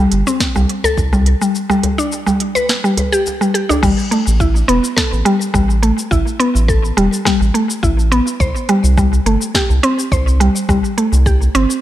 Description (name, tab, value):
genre	organic downtempo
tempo	105 BPM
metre	4/4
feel	swing 54% on 16ths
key	A minor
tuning	A4 = 440 Hz
part	mallet-like synth pluck	arpeggios	0.0-11.7 s	G3 to C5	-15 LUFS	equal	chorus, tape echo
part	round analog bass	bass	0.0-11.7 s	E1 to C2	-14 LUFS	equal	sidechain pumping
part	afro-pop drum kit	drums	0.1-11.8 s	cabasa, crash cymbal, hi-hat, snare drum	-21 LUFS	equal	none
part	djembe	percussion	0.3-3.8 s	none	-23 LUFS	equal	none
part	electronic kick drum	drums	0.4-11.4 s	none	-19 LUFS	equal	none
room	light reverb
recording	none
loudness	-12 LUFS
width	side -13 dB against mid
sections	0.0-3.8 A section; 3.8-11.8 B section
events	none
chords	0.0 C5; 1.5 G; 3.8 Asus2; 8.4 C5